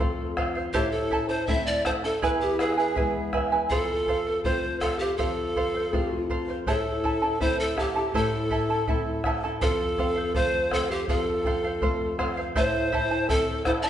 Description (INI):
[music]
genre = andean folk, Andean ensemble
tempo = 81 BPM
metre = 2/4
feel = straight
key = A minor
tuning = A4 = 437 Hz
[part]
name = breathy bright pan flute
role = melody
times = 0.0-13.9 s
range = G4 to E5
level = -27 LUFS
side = right 1 dB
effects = none
[part]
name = charango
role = accompaniment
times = 0.0-13.9 s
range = E4 to A5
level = -29 LUFS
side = right 3 dB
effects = none
[part]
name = flamenco guitar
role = accompaniment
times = 0.0-13.9 s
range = E2 to F4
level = -31 LUFS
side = left 4 dB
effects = none
[part]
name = bombo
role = percussion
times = 0.0-13.8 s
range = none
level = -31 LUFS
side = equal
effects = none
[sound]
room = wet recital hall reverb, RT60 1.5 s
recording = recorded in a church or concert hall, nothing above 10.7 kHz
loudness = -23 LUFS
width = side -10 dB against mid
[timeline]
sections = 0.0-9.6 A section; 9.6-13.9 A section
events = none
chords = 0.0 F; 0.7 Am; 2.2 E; 3.7 F; 6.7 Am; 9.6 F; 12.6 Am